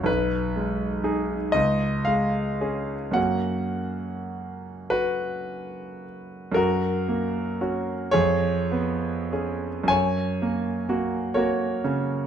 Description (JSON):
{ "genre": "classical, romantic nocturne for solo piano", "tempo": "32-43 BPM (dotted quarters)", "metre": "6/8", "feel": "rubato", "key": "F# major", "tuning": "A4 = 440 Hz", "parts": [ { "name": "clear concert grand piano", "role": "solo", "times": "0.0-12.3 s", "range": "B1 to G#5", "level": "-23 LUFS", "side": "equal", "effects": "none" } ], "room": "moderate recital hall reverb, RT60 1.5 s", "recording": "close, detailed microphones", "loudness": "-23 LUFS", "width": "side -8 dB against mid", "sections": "0.0-6.6 A section; 6.6-12.3 B section", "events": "none", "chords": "0.1 G#m/B; 1.5 C#; 3.2 F#; 8.1 C#7/E#; 9.9 F#", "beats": "| 0.08 1.54 | 3.17 4.92 | 6.57 8.14 | 9.91 11.37" }